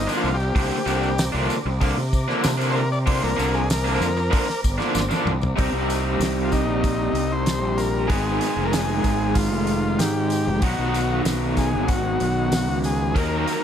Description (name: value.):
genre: psychedelic rock.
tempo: 95 BPM.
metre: 4/4.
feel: straight.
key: C minor.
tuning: A4 = 439 Hz.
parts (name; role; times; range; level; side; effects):
overdriven combo organ; melody; 0.0-13.6 s; Eb4 to D5; -27 LUFS; left 2 dB; analog delay.
mellow tonewheel organ; sustained chords; 0.0-5.5 s; C5 to D6; -33 LUFS; right 2 dB; slow rotary speaker, chorus vibrato.
fuzz fingered electric bass; bass; 0.0-13.4 s; F1 to C3; -25 LUFS; equal; overdrive.
raw garage guitar; riff; 0.1-13.6 s; Ab2 to Eb4; -24 LUFS; equal; overdrive, tremolo.
tambourine; percussion; 0.1-13.6 s; none; -38 LUFS; left 8 dB; none.
damped 70s drum kit; drums; 0.6-13.6 s; hi-hat, kick drum, snare drum, toms; -26 LUFS; equal; none.
room: light reverb.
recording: none.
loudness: -19 LUFS.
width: side -9 dB against mid.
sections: 0.0-5.6 A section; 5.6-13.6 B section.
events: transistor combo organ solo 0.0-5.6; drum fill 5.0-5.6.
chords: 0.0 Bbadd9; 5.6 Cm7; 8.1 Abm; 10.6 Badd9.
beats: | 0.55 1.18 1.81 2.44 | 3.07 3.69 4.32 4.95 | 5.58 6.21 6.84 7.47 | 8.10 8.73 9.37 10.00 | 10.63 11.26 11.89 12.52 | 13.15.